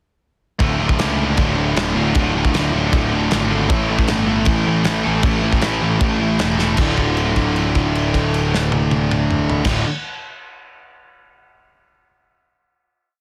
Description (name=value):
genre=punk rock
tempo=155 BPM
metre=4/4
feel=straight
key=D harmonic minor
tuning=A4 = 440 Hz
part: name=fuzz guitar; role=riff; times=0.6-9.8 s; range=D2 to A4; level=-26 LUFS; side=equal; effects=distortion
part: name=sludgy distorted guitar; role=riff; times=0.6-9.8 s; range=D2 to A3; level=-25 LUFS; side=equal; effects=overdrive
part: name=tight distorted guitar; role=riff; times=0.6-9.9 s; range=D2 to A3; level=-26 LUFS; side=equal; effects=distortion
part: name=fuzz picked electric bass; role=bass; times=0.6-9.8 s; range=D1 to C#2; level=-24 LUFS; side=equal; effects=overdrive
part: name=loose indie drum kit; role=drums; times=0.6-9.8 s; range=crash cymbal, kick drum, snare drum, toms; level=-24 LUFS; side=equal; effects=none
room=little or no reverb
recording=dense, heavily limited modern master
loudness=-18 LUFS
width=mono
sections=0.6-6.8 riff; 6.8-9.9 final chord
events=drum fill 6.6; held note 6.8-9.7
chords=0.6 Dm; 3.7 A; 6.8 Dm